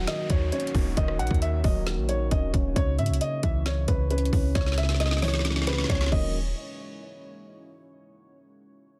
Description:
hip hop, trap; 134 BPM; 4/4; half-time; Eb phrygian; A4 = 440 Hz
dark grand piano; melody; 0.0-6.3 s; Cb5 to Gb5; -34 LUFS; equal; delay
dark concert grand piano; accompaniment; 0.0-6.4 s; Db3 to Db4; -34 LUFS; equal
deep dark ambient pad; sustained chords; 0.0-6.3 s; Ab3 to Db5; -42 LUFS; equal; chorus, built-in reverb
clean 808-style bass; bass; 0.0-6.5 s; Eb1 to Ab2; -29 LUFS; equal
downlifter; sound effects; 0.0-2.8 s; -46 LUFS; equal
trap drum kit; drums; 0.1-6.2 s; crash cymbal, hi-hat, kick drum, rim click, snare drum; -30 LUFS; equal
digital ambience; dense, heavily limited modern master; -25 LUFS; mono
0.0-6.3 A section; 6.3-8.1 B section
drum fill 4.6-6.3
0.0 Ebm7; 2.8 Dbm; 6.1 Ebm7; 6.3 N.C.
0.07 0.52 | 0.97 1.42 1.87 2.31 | 2.76 3.21 3.66 4.11 | 4.55 5.00 5.45 5.90 | 6.34

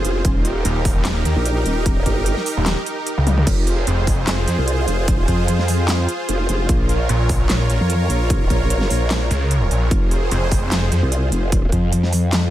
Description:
heavy wobble dubstep; 149 BPM; 4/4; swing 54% on 16ths, half-time; F minor; A4 = 440 Hz
supersaw pad; sustained chords; 0.0-11.5 s; Eb4 to Db5; -24 LUFS; right 2 dB; sidechain pumping
growl bass; bass; 0.0-12.5 s; Eb1 to F2; -19 LUFS; equal; chorus, overdrive
big-room dance drum kit; drums; 0.0-12.4 s; crash cymbal, handclaps, hi-hat, snare drum, toms; -24 LUFS; equal
electronic kick drum; drums; 0.2-11.8 s; -19 LUFS; equal
snarling distorted saw bass; bass; 0.7-4.6, 7.1-11.0 s; Eb1 to F2; -18 LUFS; equal; distortion, overdrive
little or no reverb; -16 LUFS; side -13 dB against mid
0.0-12.5 A section
drum fill 3.3
0.2 Eb; 3.5 Fm; 6.7 Bbm; 9.9 Fm
| 0.25 0.65 1.05 1.46 | 1.86 2.26 2.66 3.07 | 3.47 3.87 4.27 4.68 | 5.08 5.48 5.88 6.29 | 6.69 7.09 7.50 7.90 | 8.30 8.70 9.11 9.51 | 9.91 10.31 10.72 11.12 | 11.52 11.93 12.33

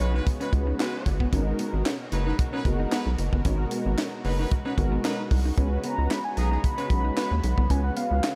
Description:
early-eighties boogie funk; 113 BPM; 4/4; straight; G# minor; A4 = 439 Hz
mellow horn-like synth lead; melody; 0.0-0.5, 5.8-8.4 s; C#5 to B5; -35 LUFS; equal; chorus, delay
clear horn section; second line; 0.0-7.3 s; C#3 to B4; -40 LUFS; equal
lush unison pad; sustained chords; 0.0-8.4 s; B2 to A#4; -39 LUFS; equal; chorus
electric guitar at the edge of break-up; riff; 0.0-8.3 s; B3 to D#4; -37 LUFS; equal; subtle chorus
rubbery square bass; bass; 0.0-8.2 s; F#1 to D#2; -28 LUFS; equal
tight funk drum kit; drums; 0.0-8.4 s; handclaps, hi-hat, kick drum, snare drum; -30 LUFS; equal
mellow synth brass; accompaniment; 0.5-8.3 s; G#3 to B4; -36 LUFS; equal; chorus
light reverb; -26 LUFS; mono
0.0-8.4 A section
0.0 C#7sus4; 1.3 G#m9; 5.6 C#7sus4
0.27 0.80 | 1.33 1.86 2.39 2.92 | 3.45 3.98 4.51 5.04 | 5.57 6.11 6.64 7.17 | 7.70 8.23

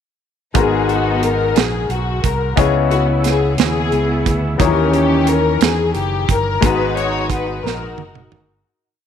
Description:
slow gospel; 59 BPM (dotted quarters); 6/8; straight; G# minor; A4 = 440 Hz
bright grand piano; accompaniment; 0.5-8.7 s; G#2 to A#5; -20 LUFS; left 8 dB
fingered electric bass; bass; 0.5-8.6 s; F#1 to E2; -21 LUFS; right 2 dB
modern studio drum kit; drums; 0.5-8.5 s; hi-hat, kick drum, snare drum, toms; -18 LUFS; right 6 dB
warm studio string section; melody; 0.6-8.6 s; B3 to C#5; -18 LUFS; left 2 dB
light reverb, studio reverb; 1960s-style stereo with parts hard left and right; -14 LUFS; side -8 dB against mid
0.6-8.6 A section
fade-out 6.6-8.6; drum fill 7.6-8.6
0.6 G#m9; 2.6 C#m9; 4.6 D#7b9; 6.6 G#m9
| 0.55 1.56 | 2.58 3.59 | 4.60 5.61 | 6.62 7.63

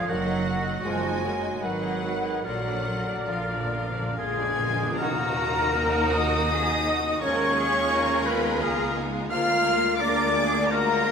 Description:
classical, slow romantic movement for symphony orchestra; 65-88 BPM; 3/4; rubato; Eb minor; A4 = 439 Hz
rich chamber violin section; melody; 0.0-11.1 s; Bb4 to F6; -32 LUFS; left 3 dB
clear chamber violin section; second line; 0.0-11.1 s; F4 to Ab5; -33 LUFS; left 2 dB
flute section; second line; 0.0-11.1 s; Ab4 to Gb5; -31 LUFS; left 2 dB
warm oboe; second line; 0.0-11.1 s; Gb4 to F5; -29 LUFS; equal
mellow bassoon; accompaniment; 0.0-4.6 s; D3 to Gb3; -34 LUFS; right 2 dB
rich chamber viola section; accompaniment; 0.0-11.1 s; Ab3 to D5; -33 LUFS; right 1 dB
dark French horn section; sustained chords; 0.0-11.1 s; F3 to F4; -32 LUFS; left 3 dB
rich chamber cello section; bass; 0.0-11.1 s; F3 to Bb4; -32 LUFS; right 3 dB
rich studio double bass section; bass; 0.1-11.1 s; Gb1 to Eb2; -32 LUFS; right 2 dB
cymbal swell and tam-tam; percussion; 2.4-7.9 s; -39 LUFS; left 1 dB
timpani; percussion; 2.5-5.0 s; Bb2; -35 LUFS; equal
warm trombone section; sustained chords; 5.0-9.6 s; F3 to Eb4; -36 LUFS; right 2 dB
wet scoring stage reverb, RT60 1.7 s; minimal, uncompressed stereo recording; -22 LUFS; side -6 dB against mid
0.0-5.0 A section; 5.0-11.1 B section
timpani fill 2.4-5.0; band accent 5.0-5.7
0.1 Ebm/Gb; 1.6 Abm7; 2.4 Bb; 5.0 Ebm; 7.2 Db/Eb; 9.3 Bb7/D
| 0.09 0.85 1.62 | 2.44 3.29 4.18 | 4.99 5.75 6.51 | 7.22 7.93 8.62 | 9.31 10.01 10.71

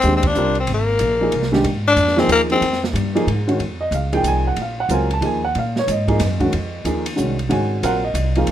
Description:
modal jazz; 185 BPM; 3/4; swing 64% on 8ths; Bb minor from 3.6 s; A4 = 438 Hz
growling tenor saxophone; melody; 0.0-2.8 s; Bb3 to D4; -17 LUFS; left 3 dB
warm baby grand piano; accompaniment; 0.0-8.5 s; Eb3 to A5; -20 LUFS; right 1 dB
upright bass; bass; 0.0-8.5 s; Ab1 to Bb2; -22 LUFS; right 1 dB
open jazz drum kit; drums; 0.0-8.5 s; hi-hat, kick drum, ride cymbal, snare drum; -27 LUFS; right 2 dB
light reverb; close, detailed microphones; -16 LUFS; side -11 dB against mid
0.0-3.6 A section; 3.6-8.5 B section
band accent 0.2
0.0 Fm9; 3.6 Bb9sus4; 7.5 Ab9sus4
0.03 0.35 | 0.68 1.00 1.33 | 1.65 1.98 2.30 | 2.62 2.95 3.27 | 3.60 3.92 4.25 | 4.57 4.90 5.22 | 5.55 5.87 6.20 | 6.52 6.85 7.17 | 7.50 7.82 8.14 | 8.47

